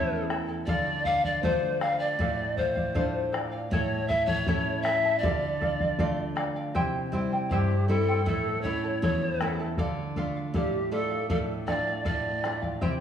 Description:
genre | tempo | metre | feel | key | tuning
andean folk, Andean ensemble | 79 BPM | 2/4 | straight | D minor | A4 = 440 Hz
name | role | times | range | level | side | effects
reedy pan flute | melody | 0.0-12.6 s | G4 to F5 | -28 LUFS | left 1 dB | none
charango | accompaniment | 0.0-13.0 s | E4 to A5 | -34 LUFS | equal | none
nylon-string guitar | accompaniment | 0.0-13.0 s | E2 to F4 | -31 LUFS | right 1 dB | none
bombo | percussion | 0.3-13.0 s | none | -32 LUFS | left 1 dB | none
room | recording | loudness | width
wet recital hall reverb, RT60 1.6 s | studio ambience | -25 LUFS | side -8 dB against mid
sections
0.0-6.8 A section; 6.8-13.0 B section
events
none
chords
0.0 A; 0.7 Dm; 3.7 A; 5.2 Dm; 6.8 C; 8.3 A; 9.8 Dm

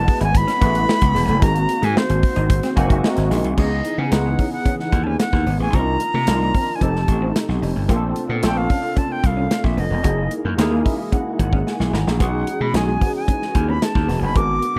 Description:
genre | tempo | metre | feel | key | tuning
polished 1980s jazz-funk pop | 111 BPM | 4/4 | straight | unclear | A4 = 439 Hz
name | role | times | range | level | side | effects
silver concert flute | melody | 0.0-14.8 s | B#4 to D6 | -26 LUFS | equal | none
barky tine electric piano | accompaniment | 0.0-14.8 s | G#3 to A#5 | -27 LUFS | equal | ensemble chorus
soft string machine | sustained chords | 0.0-14.8 s | C3 to F#4 | -35 LUFS | equal | none
gritty slap bass | bass | 0.0-14.8 s | E1 to C#3 | -23 LUFS | equal | overdrive
modern studio drum kit | drums | 0.1-14.7 s | crash cymbal, hi-hat, kick drum, snare drum | -22 LUFS | equal | none
clean electric guitar | riff | 0.2-14.8 s | G#3 to F#4 | -30 LUFS | equal | lush chorus
room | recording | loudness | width
little or no reverb | dry, close 1970s-style studio recording | -19 LUFS | mono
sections
0.0-3.6 A section; 3.6-14.8 B section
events
tine electric piano fill 2.5-3.6, 10.6-12.2; drum fill 11.7-12.2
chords
0.0 F#m11; 1.4 G#7; 3.6 C#m9; 5.7 Cm11; 6.8 F7; 7.9 A#maj9; 10.0 F#13; 12.2 B6

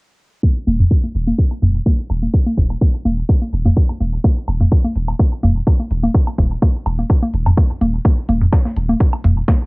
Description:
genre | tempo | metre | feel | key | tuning
minimal techno | 126 BPM | 4/4 | swing 53% on 16ths | unclear | A4 = 440 Hz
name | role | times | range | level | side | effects
electronic kick drum | drums | 0.4-9.6 s | none | -14 LUFS | equal | cassette tape
electronic congas, toms and woodblock | percussion | 0.4-9.6 s | none | -18 LUFS | equal | cassette tape, analog delay
punchy sub bass | bass | 0.7-9.4 s | Eb1 | -18 LUFS | equal | sidechain pumping
electronic hi-hat | drums | 0.7-9.3 s | none | -51 LUFS | right 1 dB | low-pass filter on hats, cassette tape, low-pass filter on room
breakbeat sampler-style drum kit | drums | 8.1-9.6 s | hi-hat, snare drum | -34 LUFS | equal | sidechain pumping on hats, high-pass filter on hats, cassette tape, high-pass filter on snare
room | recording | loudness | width
light reverb | home recording on cassette, low-pass filter | -14 LUFS | side -30 dB against mid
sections
0.4-9.7 A section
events
filter sweep on drum 0.4-9.7; filter sweep on sub bass 0.4-9.7; filter sweep 0.4-9.7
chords
none

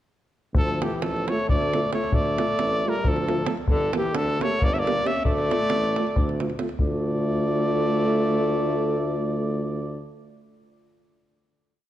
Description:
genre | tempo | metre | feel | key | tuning
balkan folk, Balkan brass band | 268 BPM (eighths) | 7/8 | straight | D harmonic minor | A4 = 439 Hz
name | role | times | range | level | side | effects
warm tuba | bass | 0.5-10.1 s | G1 to D2 | -29 LUFS | right 1 dB | none
davul | percussion | 0.5-7.0 s | none | -26 LUFS | equal | none
clear trumpet | melody | 0.6-10.1 s | G4 to E5 | -27 LUFS | right 1 dB | slapback echo
clear alto saxophone | second line | 0.6-10.1 s | D3 to C#4 | -29 LUFS | left 2 dB | none
mellow trombone | accompaniment | 0.8-10.1 s | A3 to Bb3 | -32 LUFS | right 6 dB | none
warm euphonium | accompaniment | 0.8-10.1 s | F4 to G4 | -32 LUFS | left 5 dB | none
room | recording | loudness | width
light reverb | dark, warm production | -21 LUFS | side -12 dB against mid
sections
0.5-6.8 A section; 6.8-10.0 final chord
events
none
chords
0.5 Dm; 3.7 Gm; 5.2 Dm

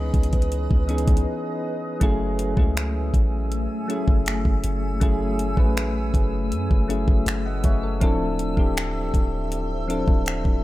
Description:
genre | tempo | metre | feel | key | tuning
contemporary R&B | 80 BPM | 4/4 | straight | unclear | A4 = 445 Hz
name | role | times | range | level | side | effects
soft electric-piano-like synth keys | accompaniment | 0.0-10.6 s | Fb3 to Gb5 | -26 LUFS | left 1 dB | chorus, tremolo
granular cloud pad | sustained chords | 0.0-10.6 s | A3 to Fb6 | -32 LUFS | equal | built-in reverb, sidechain pumping
warm 808-style bass | bass | 0.0-10.6 s | D1 to Gb2 | -26 LUFS | equal | none
smooth R&B drum kit | drums | 0.1-10.6 s | finger snaps, hi-hat, kick drum | -21 LUFS | equal | none
room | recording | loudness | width
little or no reverb | none | -20 LUFS | side -16 dB against mid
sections
0.0-10.6 A section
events
break 1.3-2.0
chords
0.0 Dbm9; 2.0 Gbm9; 8.0 Dm9

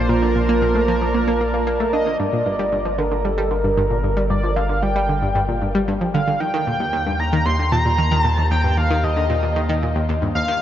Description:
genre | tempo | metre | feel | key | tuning
ambient, sequencer-driven space music | 114 BPM | 4/4 | straight | G minor | A4 = 441 Hz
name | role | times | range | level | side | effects
pulse-width lead | melody | 0.0-10.6 s | A4 to C6 | -21 LUFS | equal | chorus, tape echo
phased analog pad | sustained chords | 0.0-10.6 s | Eb3 to A5 | -28 LUFS | right 2 dB | phaser, chorus
round analog bass | bass | 0.0-10.6 s | G1 to Eb2 | -23 LUFS | equal | none
analog pluck | riff | 0.1-10.5 s | Eb2 to D4 | -22 LUFS | equal | chorus, tape echo
room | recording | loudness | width
wet huge ambient reverb, RT60 8.6 s | dreamy mix soaked in reverb, nothing above 7.5 kHz | -17 LUFS | side -11 dB against mid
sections
0.0-2.2 A section; 2.2-10.6 B section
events
fade-in on analog synth pad 2.2-10.6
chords
0.0 Bbmaj7; 2.2 Gm; 6.4 Eb6

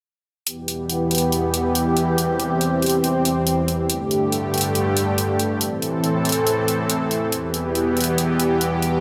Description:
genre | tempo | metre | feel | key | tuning
heavy wobble dubstep | 140 BPM | 4/4 | swing 54% on 16ths, half-time | E minor | A4 = 440 Hz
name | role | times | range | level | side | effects
supersaw pad | sustained chords | 0.5-9.0 s | E2 to A4 | -22 LUFS | equal | none
electronic hi-hat | drums | 0.5-8.9 s | none | -26 LUFS | equal | overdrive
room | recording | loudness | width
moderate lush hall reverb, RT60 2.0 s | none | -21 LUFS | mono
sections
0.5-9.0 A section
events
none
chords
0.5 Em; 2.2 C/E; 3.9 Gsus2; 5.6 Am; 7.3 Em

